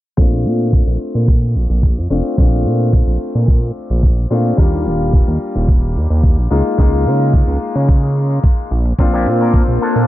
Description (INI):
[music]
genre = nu-disco, nu disco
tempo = 109 BPM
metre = 4/4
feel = swing 53% on 16ths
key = Bb major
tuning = A4 = 442 Hz
[part]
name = bright grand piano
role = accompaniment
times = 0.2-10.1 s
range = G3 to F4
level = -20 LUFS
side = left 3 dB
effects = sidechain pumping, low-pass filter, dub echo
[part]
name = fat analog bass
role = bass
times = 0.2-10.1 s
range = Eb1 to Db3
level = -15 LUFS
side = equal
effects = tube saturation
[part]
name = electronic hi-hat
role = drums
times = 0.2-10.1 s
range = none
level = -52 LUFS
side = right 1 dB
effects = none
[part]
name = electronic kick drum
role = drums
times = 0.2-9.7 s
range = none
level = -12 LUFS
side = equal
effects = small room reverb
[part]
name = lush unison pad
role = sustained chords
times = 9.0-10.1 s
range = Bb3 to C5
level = -20 LUFS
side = left 2 dB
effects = chorus, sidechain pumping
[part]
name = electric guitar with an envelope filter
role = riff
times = 9.0-10.1 s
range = Bb3 to Bb4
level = -23 LUFS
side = left 2 dB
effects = lush chorus
[sound]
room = little or no reverb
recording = dark, warm production, low-pass filter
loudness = -12 LUFS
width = side -15 dB against mid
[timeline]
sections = 0.2-10.1 A section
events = filter sweep on analog synth bass 0.2-10.1; filter sweep on grand piano 0.2-10.1; filter sweep 0.2-10.1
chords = 0.2 Bbmaj7; 4.6 Ebmaj7; 6.5 Db6; 9.0 Bbmaj7